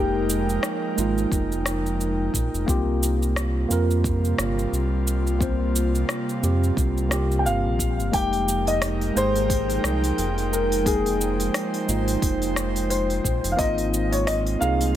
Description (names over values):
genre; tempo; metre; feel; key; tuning
sunset chillout; 88 BPM; 4/4; swing 57% on 16ths; F minor; A4 = 441 Hz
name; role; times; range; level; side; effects
dark concert grand piano; melody; 0.0-0.6, 7.4-15.0 s; G4 to G5; -26 LUFS; left 2 dB; digital delay
tine electric piano; accompaniment; 0.0-15.0 s; Ab3 to C5; -27 LUFS; moving between left 5 dB and right 6 dB; auto-pan, digital delay
airy breathy pad; sustained chords; 0.0-15.0 s; C3 to G5; -29 LUFS; right 1 dB; chorus
round analog bass; bass; 0.0-15.0 s; F1 to F2; -25 LUFS; equal; tube saturation
deep house drum kit; drums; 0.3-14.9 s; cabasa, hi-hat, rim click; -30 LUFS; equal; none
electronic kick drum; drums; 1.3-13.7 s; none; -26 LUFS; equal; none
room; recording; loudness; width
light reverb, digital ambience; none; -21 LUFS; side -12 dB against mid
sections
0.0-15.0 A section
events
none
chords
0.0 Fm11; 2.7 C7sus4; 8.1 Fm11; 13.6 Ab6